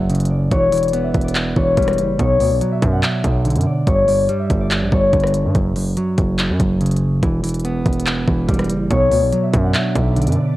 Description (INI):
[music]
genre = hip hop, trap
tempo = 143 BPM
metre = 4/4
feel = half-time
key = B minor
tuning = A4 = 440 Hz
[part]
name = concert harp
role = melody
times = 0.0-10.6 s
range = B4 to F#5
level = -20 LUFS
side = left 3 dB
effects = none
[part]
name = mellow electric guitar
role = accompaniment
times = 0.0-10.6 s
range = F#2 to B3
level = -19 LUFS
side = right 1 dB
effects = cassette tape
[part]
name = distorted 808-style bass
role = bass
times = 0.0-10.4 s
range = E1 to G2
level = -21 LUFS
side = equal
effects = distortion
[part]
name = trap drum kit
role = drums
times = 0.1-10.4 s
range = handclaps, hi-hat, kick drum, rim click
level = -22 LUFS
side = equal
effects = overdrive
[part]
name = ethereal airy pad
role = sustained chords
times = 9.7-10.6 s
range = B3 to D5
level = -31 LUFS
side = left 6 dB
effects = ensemble chorus, built-in reverb, phaser, cassette tape
[sound]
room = digital ambience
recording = home recording on cassette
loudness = -15 LUFS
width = side -16 dB against mid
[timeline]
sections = 0.0-8.9 A section; 8.9-10.6 B section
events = none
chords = 0.0 F#5; 0.5 Em; 2.2 Bm; 3.9 G5; 5.5 F#5; 7.2 Em; 8.9 Bm